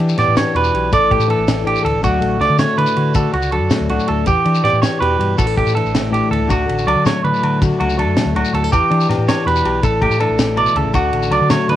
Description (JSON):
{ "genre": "highlife guitar band", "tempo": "108 BPM (dotted quarters)", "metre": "12/8", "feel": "straight", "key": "D major", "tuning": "A4 = 440 Hz", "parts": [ { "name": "fingerpicked plugged-in acoustic archtop guitar", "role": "accompaniment", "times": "0.0-11.8 s", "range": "A2 to A4", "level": "-19 LUFS", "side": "left 4 dB", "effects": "cassette tape" }, { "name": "hollow-body short-scale fingered electric bass", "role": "bass", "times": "0.0-11.8 s", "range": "A1 to E3", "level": "-20 LUFS", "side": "equal", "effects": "none" }, { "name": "tight funk drum kit", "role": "drums", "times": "0.0-11.8 s", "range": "kick drum, ride cymbal, snare drum", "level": "-23 LUFS", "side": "right 1 dB", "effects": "cassette tape" }, { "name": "shekere", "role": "percussion", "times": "0.1-11.7 s", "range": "none", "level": "-25 LUFS", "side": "left 5 dB", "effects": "none" }, { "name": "clean electric guitar", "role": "arpeggios", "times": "0.2-11.8 s", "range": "F#4 to D5", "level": "-18 LUFS", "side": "right 4 dB", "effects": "cassette tape, tape echo" }, { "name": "agogo bells", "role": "percussion", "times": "6.5-11.7 s", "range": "none", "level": "-28 LUFS", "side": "left 8 dB", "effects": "none" } ], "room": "light reverb", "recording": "home recording on cassette", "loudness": "-13 LUFS", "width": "side -12 dB against mid", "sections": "0.0-11.8 A section", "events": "none", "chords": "0.0 Em7; 0.9 Asus4; 2.0 D; 4.3 Em7; 5.4 Asus4; 6.5 D; 8.7 Em7; 9.8 Asus4; 10.9 D" }